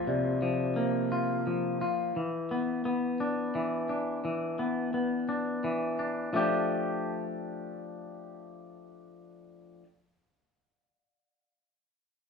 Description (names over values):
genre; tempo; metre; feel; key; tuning
rock; 57 BPM (dotted quarters); 6/8; straight; F major; A4 = 440 Hz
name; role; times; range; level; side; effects
twangy electric guitar; arpeggios; 0.0-9.9 s; C3 to G4; -29 LUFS; left 2 dB; none
vibraphone with soft mallets; arpeggios; 0.0-2.2 s; C5 to F5; -37 LUFS; left 1 dB; none
room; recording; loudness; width
wet studio reverb, RT60 0.7 s; band playing live in one room; -28 LUFS; side -5 dB against mid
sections
0.0-6.3 A section; 6.3-10.5 B section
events
none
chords
0.0 C7sus4; 2.2 E5; 6.3 F69